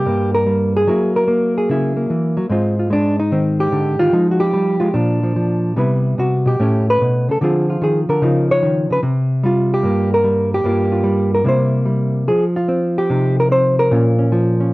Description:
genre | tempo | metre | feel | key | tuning
solo jazz | 148 BPM | 4/4 | swing 67% on 8ths, rubato | C minor | A4 = 441 Hz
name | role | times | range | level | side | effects
hollow-body jazz guitar | solo | 0.0-14.7 s | G2 to Db5 | -14 LUFS | equal | none
room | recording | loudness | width
moderate studio reverb, RT60 0.8 s | worn, warbling old tape, cassette tape, warbly pitch drift | -14 LUFS | side -20 dB against mid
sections
0.0-12.3 A section; 12.3-14.7 B section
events
none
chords
0.0 C7(no3) (rootless); 0.9 F#9; 2.5 Ab6; 4.1 Fm7; 4.9 Bb; 5.8 Cmaj7; 6.6 A; 7.4 Dm7b5; 8.2 Dbadd9; 9.0 C5; 10.6 Gm7; 11.5 C7; 12.3 Fsus2; 13.9 Bbm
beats
0.07 0.48 | 0.89 1.30 1.70 2.11 | 2.51 2.92 3.32 3.72 | 4.13 4.53 4.94 5.36 | 5.77 6.18 6.59 7.00 | 7.42 7.82 8.23 8.63 | 9.04 9.44 9.84 10.24 | 10.65 11.05 11.46 11.88 | 12.30 12.71 13.12 13.53 | 13.93 14.34

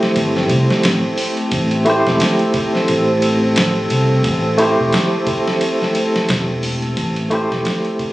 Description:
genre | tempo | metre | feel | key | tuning
trip hop | 88 BPM | 4/4 | swing 57% on 16ths | A minor | A4 = 440 Hz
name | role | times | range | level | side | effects
barky tine electric piano | accompaniment | 0.0-8.1 s | A3 to C5 | -17 LUFS | equal | tremolo, vintage 12-bit sampler grit, tape echo
warbly tape-like pad | sustained chords | 0.0-8.1 s | A3 to A4 | -22 LUFS | equal | chorus, built-in reverb
dusty soul sampler-style drum kit | drums | 0.0-8.1 s | hi-hat, kick drum, ride cymbal, snare drum | -21 LUFS | equal | overdrive
fingered electric bass | bass | 0.2-7.6 s | E1 to C2 | -20 LUFS | equal | none
room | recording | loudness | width
light reverb, digital ambience | recorded on a phone in the room, studio reverb | -14 LUFS | side -17 dB against mid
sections
0.0-8.1 A section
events
fade-out 5.2-8.1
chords
0.0 Am7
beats
0.16 0.84 | 1.52 2.20 2.88 3.57 | 4.25 4.93 5.61 6.29 | 6.98 7.66

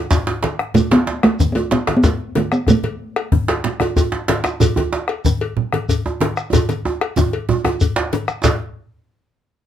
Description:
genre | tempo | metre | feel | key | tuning
west african traditional, West African drum ensemble | 125 BPM (dotted quarters) | 12/8 | straight | unclear | A4 = 440 Hz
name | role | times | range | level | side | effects
bombo | percussion | 0.1-8.6 s | none | -20 LUFS | left 2 dB | none
djembe | percussion | 0.1-8.6 s | none | -24 LUFS | left 4 dB | none
djembe | percussion | 0.1-8.6 s | none | -21 LUFS | right 4 dB | none
shekere | percussion | 0.1-8.6 s | none | -26 LUFS | right 2 dB | none
congas | percussion | 0.4-8.6 s | none | -23 LUFS | right 6 dB | none
cowbell | percussion | 0.4-8.6 s | none | -24 LUFS | left 6 dB | none
talking drum | melody | 0.8-3.1 s | A3 to B3 | -16 LUFS | right 1 dB | plate reverb
room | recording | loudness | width
wet small room reverb, RT60 0.5 s | none | -16 LUFS | side -10 dB against mid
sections
0.0-8.4 A section; 8.4-9.7 B section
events
drum fill 0.3-0.8, 6.5-8.4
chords
none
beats
0.27 | 0.75 1.23 1.72 2.20 | 2.68 3.16 3.65 4.13 | 4.61 5.09 5.57 6.05 | 6.53 7.01 7.49 7.96 | 8.44

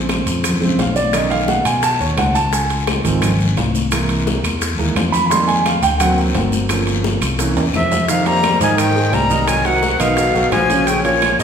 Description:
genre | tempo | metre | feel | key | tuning
Afro-Cuban jazz | 173 BPM | 4/4 | straight | F minor | A4 = 440 Hz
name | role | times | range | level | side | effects
warm grand piano | accompaniment | 0.0-11.4 s | Db3 to C6 | -19 LUFS | right 3 dB | none
fingered electric bass | bass | 0.0-11.4 s | G1 to B2 | -20 LUFS | left 1 dB | none
bongos | percussion | 0.1-11.4 s | none | -27 LUFS | left 6 dB | none
claves | percussion | 0.1-11.4 s | none | -30 LUFS | right 3 dB | none
congas | percussion | 0.1-11.4 s | none | -26 LUFS | left 2 dB | none
guiro | percussion | 0.1-11.4 s | none | -29 LUFS | left 6 dB | none
maracas | percussion | 0.1-11.4 s | none | -30 LUFS | right 5 dB | none
timbales | percussion | 0.1-11.4 s | none | -27 LUFS | right 3 dB | none
breathy bright jazz flute | melody | 7.7-11.4 s | Db5 to Bb5 | -17 LUFS | equal | none
growling tenor saxophone | second line | 7.7-11.4 s | Bb2 to G3 | -23 LUFS | left 5 dB | none
room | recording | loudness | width
wet recital hall reverb, RT60 1.6 s | recorded in a church or concert hall | -14 LUFS | side -7 dB against mid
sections
0.0-8.1 A section; 8.1-11.4 B section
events
grand piano solo 0.0-8.1; drum fill 7.6-8.1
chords
0.0 Bbm7; 1.1 B9; 2.5 Dbmaj7; 3.9 C7b13; 5.3 Fm11; 6.0 D7b13; 6.7 Gm7b5; 7.4 C7b9; 8.1 Fm11; 9.5 Cm7b5; 10.2 B5; 10.9 Bbm7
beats
0.10 0.45 0.79 | 1.14 1.49 1.83 2.18 | 2.53 2.88 3.22 3.57 | 3.92 4.27 4.61 4.96 | 5.31 5.66 6.00 6.35 | 6.70 7.05 7.39 7.74 | 8.09 8.44 8.79 9.13 | 9.48 9.83 10.18 10.53 | 10.87 11.22

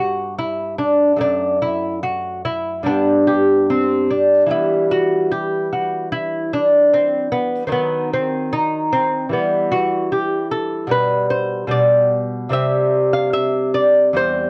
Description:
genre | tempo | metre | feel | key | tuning
classical, baroque-style dance for lute | 74 BPM | 4/4 | rubato | C major from 10.9 s | A4 = 440 Hz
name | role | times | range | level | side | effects
lute | solo | 0.0-14.5 s | E2 to F5 | -18 LUFS | equal | cassette tape
room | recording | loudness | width
light reverb | home recording on cassette | -18 LUFS | mono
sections
0.0-14.5 A section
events
none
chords
0.0 G; 1.2 F#m7; 2.9 G; 4.5 Em; 7.7 Ebm6; 9.3 Em; 10.9 G/B; 12.5 C5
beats
0.39 | 1.22 2.05 2.88 3.70 | 4.52 5.32 6.12 6.93 | 7.74 8.53 9.33 10.12 | 10.92 11.73 12.54 13.35 | 14.16

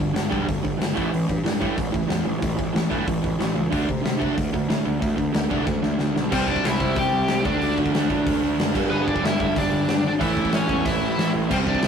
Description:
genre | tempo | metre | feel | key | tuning
punk rock | 185 BPM | 4/4 | straight | unclear | A4 = 440 Hz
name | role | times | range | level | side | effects
crunchy overdriven guitar | riff | 0.0-11.9 s | G2 to D4 | -30 LUFS | left 7 dB | none
crunchy overdriven guitar | riff | 0.0-11.9 s | G2 to D4 | -25 LUFS | right 6 dB | none
fuzz picked electric bass | bass | 0.0-11.9 s | E1 to C3 | -28 LUFS | left 1 dB | overdrive
big rock drum kit | drums | 0.0-11.9 s | crash cymbal, hi-hat, kick drum, snare drum | -26 LUFS | left 2 dB | none
high-gain lead guitar | melody | 6.3-11.9 s | B3 to G5 | -25 LUFS | left 3 dB | distortion, digital delay
room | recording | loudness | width
light reverb | rough rehearsal-room recording, warm saturation | -20 LUFS | side -7 dB against mid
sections
0.0-6.3 A section; 6.3-11.9 B section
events
drum fill 5.7-6.3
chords
0.0 G5; 1.0 A5; 3.7 D5; 6.3 C; 7.4 D5; 8.7 G; 10.2 A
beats
0.15 0.47 0.79 | 1.12 1.44 1.77 2.09 | 2.42 2.74 3.06 3.39 | 3.71 4.04 4.37 4.69 | 5.01 5.34 5.67 5.99 | 6.31 6.64 6.96 7.29 | 7.61 7.93 8.26 8.58 | 8.90 9.23 9.55 9.87 | 10.20 10.52 10.85 11.17 | 11.49 11.82

